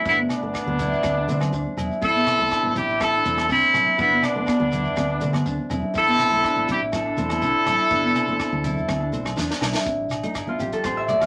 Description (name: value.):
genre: highlife guitar band.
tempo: 122 BPM.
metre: 4/4.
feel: straight.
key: A minor.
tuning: A4 = 437 Hz.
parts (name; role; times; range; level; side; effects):
bright horn section; melody; 0.0-9.3 s; B3 to A4; -23 LUFS; equal; none.
Celtic harp; arpeggios; 0.0-11.3 s; A3 to F5; -28 LUFS; equal; none.
nylon-string guitar; accompaniment; 0.1-11.3 s; A3 to D4; -34 LUFS; equal; none.
fingered electric bass; bass; 0.1-11.3 s; E1 to D3; -33 LUFS; equal; none.
compact cocktail drum kit; drums; 0.1-11.3 s; hi-hat, kick drum, rim click, snare drum; -34 LUFS; equal; none.
shekere; percussion; 0.1-11.3 s; none; -40 LUFS; equal; none.
agogo bells; percussion; 0.3-11.3 s; none; -40 LUFS; equal; none.
congas; percussion; 0.7-11.2 s; none; -38 LUFS; equal; none.
room: wet studio ambience, RT60 0.5 s.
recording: none.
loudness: -22 LUFS.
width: mono.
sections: 0.0-9.9 A section; 9.9-11.3 B section.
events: drum fill 9.4-9.9; harp solo 9.9-11.3.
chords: 0.1 Gadd9; 1.0 D5; 2.0 Am; 4.0 Gadd9; 5.0 D5; 5.9 Am; 7.9 Gadd9; 8.9 D5; 9.4 E5; 9.9 Am.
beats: | 0.05 0.55 1.04 1.53 | 2.02 2.51 3.00 3.50 | 3.99 4.48 4.97 5.46 | 5.95 6.44 6.93 7.42 | 7.91 8.39 8.88 9.37 | 9.86 10.35 10.84.